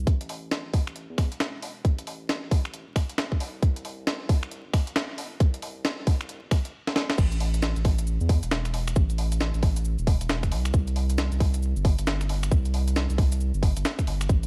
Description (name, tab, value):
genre	UK garage, two-step garage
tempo	135 BPM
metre	4/4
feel	swing 62% on 16ths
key	unclear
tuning	A4 = 440 Hz
part	saturated sub bass	bass	0.0-14.5 s	E1 to E2	-30 LUFS	equal	high-pass filter
part	breakbeat sampler-style drum kit	drums	0.1-14.5 s	crash cymbal, finger snaps, hi-hat, shaker, snare drum	-33 LUFS	equal	small room reverb
part	electronic kick drum	drums	0.1-14.4 s	none	-24 LUFS	equal	small room reverb
room	digital ambience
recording	vinyl crackle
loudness	-26 LUFS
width	mono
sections	0.1-7.2 A section; 7.2-14.5 B section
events	build-up 0.1-7.2; drum fill 6.8-7.2; drop 7.2-14.5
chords	none